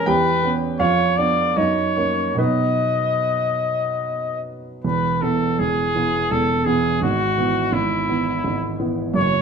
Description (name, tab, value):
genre	classical, romantic duo for trumpet and grand piano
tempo	71-87 BPM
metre	3/4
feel	rubato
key	E major from 4.8 s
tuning	A4 = 442 Hz
part	bright trumpet	melody	0.0-9.4 s	E4 to D#5	-21 LUFS	left 2 dB	none
part	warm grand piano	accompaniment	0.0-9.4 s	E1 to G5	-21 LUFS	right 3 dB	none
room	moderate stone room reverb, RT60 1.4 s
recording	none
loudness	-18 LUFS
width	side -6 dB against mid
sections	0.0-4.8 A section; 4.8-9.4 B section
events	none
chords	0.1 C#m7b5/E; 0.8 C#7b9/E#; 1.6 F#; 2.4 B; 4.8 E; 7.0 E/G#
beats	| 0.07 0.80 1.56 | 2.38 3.20 4.01 | 4.83 5.58 6.30 | 7.02 7.74 8.45 | 9.16